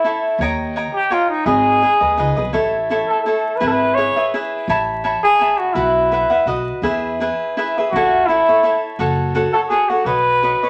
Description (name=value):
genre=mexican folk, mariachi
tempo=168 BPM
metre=3/4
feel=swing 53% on 8ths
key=E major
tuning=A4 = 439 Hz
part: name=mellow trumpet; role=melody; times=0.0-10.7 s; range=D#4 to C#5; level=-18 LUFS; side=equal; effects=none
part: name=cavaquinho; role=accompaniment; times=0.0-10.7 s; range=D#4 to B5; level=-22 LUFS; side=equal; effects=none
part: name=upright bass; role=bass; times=0.4-10.5 s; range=F#1 to E2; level=-27 LUFS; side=equal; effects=none
room=wet studio reverb, RT60 0.7 s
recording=vinyl crackle, nothing above 10.5 kHz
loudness=-17 LUFS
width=mono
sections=0.0-10.7 A section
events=none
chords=0.4 D#7; 1.5 G#m; 2.5 A; 3.6 E/G#; 4.7 Aadd9; 5.8 Bsus4; 6.5 B; 6.8 E; 7.9 A; 9.0 F#m; 10.1 Badd9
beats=0.06 | 0.41 0.76 1.11 | 1.46 1.82 2.19 | 2.55 2.91 3.27 | 3.63 3.98 4.33 | 4.69 5.04 5.40 | 5.76 6.12 6.48 | 6.84 7.20 7.56 | 7.92 8.28 8.63 | 8.99 9.35 9.70 | 10.06 10.42